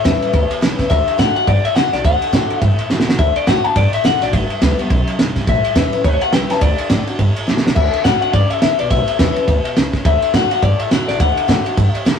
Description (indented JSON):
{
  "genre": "rockabilly",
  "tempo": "210 BPM",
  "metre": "4/4",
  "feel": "swing 59% on 8ths",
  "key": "D major",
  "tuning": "A4 = 440 Hz",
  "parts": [
    { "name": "electric guitar through a small old amp", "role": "melody", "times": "0.0-12.0 s", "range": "B4 to A5", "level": "-18 LUFS", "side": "left 6 dB", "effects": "none" },
    { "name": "picked steel-string acoustic guitar", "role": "accompaniment", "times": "0.0-12.2 s", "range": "E2 to G4", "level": "-23 LUFS", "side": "left 1 dB", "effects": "none" },
    { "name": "upright bass", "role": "bass", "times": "0.0-12.2 s", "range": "G1 to A2", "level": "-18 LUFS", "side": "right 1 dB", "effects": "none" },
    { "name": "cloth-damped thuddy drum kit", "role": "drums", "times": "0.1-12.1 s", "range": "crash cymbal, kick drum, ride cymbal, snare drum", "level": "-17 LUFS", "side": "right 1 dB", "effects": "none" }
  ],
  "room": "light reverb",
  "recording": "rough rehearsal-room recording",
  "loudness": "-13 LUFS",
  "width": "side -7 dB against mid",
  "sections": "0.0-7.8 A section; 7.8-12.2 A section",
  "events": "drum fill 2.9, 7.5",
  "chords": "0.0 A7; 0.9 D; 4.3 G; 5.5 A7; 6.6 D; 8.9 A7; 10.1 D",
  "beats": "0.05 0.34 0.62 | 0.91 1.19 1.48 1.76 | 2.05 2.33 2.62 2.90 | 3.19 3.47 3.76 4.04 | 4.33 4.62 4.90 5.19 | 5.47 5.76 6.04 6.33 | 6.61 6.90 7.19 7.47 | 7.76 8.04 8.33 8.62 | 8.90 9.19 9.48 9.76 | 10.05 10.34 10.62 10.91 | 11.20 11.48 11.77 12.06"
}